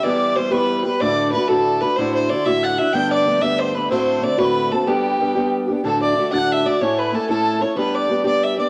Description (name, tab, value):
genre	celtic folk, Celtic jig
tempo	124 BPM (dotted quarters)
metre	6/8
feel	straight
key	G major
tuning	A4 = 440 Hz
part	warm fiddle	melody	0.0-8.7 s	G4 to G5	-23 LUFS	equal	cassette tape
part	mellow tin whistle	second line	0.0-8.7 s	G5 to A6	-27 LUFS	equal	none
part	fingerpicked steel-string acoustic guitar	accompaniment	0.0-8.7 s	D2 to A4	-22 LUFS	equal	none
room	moderate lush hall reverb, RT60 2.6 s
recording	home recording on cassette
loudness	-19 LUFS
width	mono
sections	0.0-5.8 A section; 5.8-8.7 B section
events	none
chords	0.0 Em; 1.0 D; 2.0 Dadd9; 2.9 Gadd9; 3.9 D7; 4.9 G; 5.8 D; 6.8 A; 7.8 G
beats	| 0.04 0.53 | 1.01 1.49 | 1.98 2.46 | 2.94 3.43 | 3.91 4.39 | 4.88 5.36 | 5.84 6.32 | 6.80 7.29 | 7.77 8.25